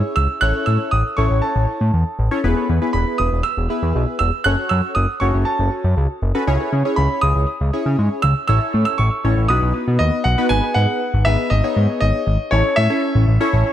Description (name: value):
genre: pop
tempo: 119 BPM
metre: 4/4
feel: straight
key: unclear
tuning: A4 = 439 Hz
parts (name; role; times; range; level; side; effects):
- bright concert grand piano; melody; 0.0-13.7 s; C#5 to F#6; -21 LUFS; right 1 dB; tape echo
- warm analog keys; accompaniment; 0.0-13.7 s; B3 to C#5; -22 LUFS; left 1 dB; chorus, phaser, tape echo
- fat analog bass; bass; 0.0-13.6 s; E1 to C#3; -17 LUFS; equal; none
room: light reverb, studio ambience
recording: echo-heavy mix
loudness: -16 LUFS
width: side -11 dB against mid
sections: 0.0-10.5 A section; 10.5-13.7 B section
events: none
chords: 0.4 A; 2.4 E; 4.5 F#m; 6.5 C#m; 8.5 A; 9.5 B; 10.5 G#m; 12.5 A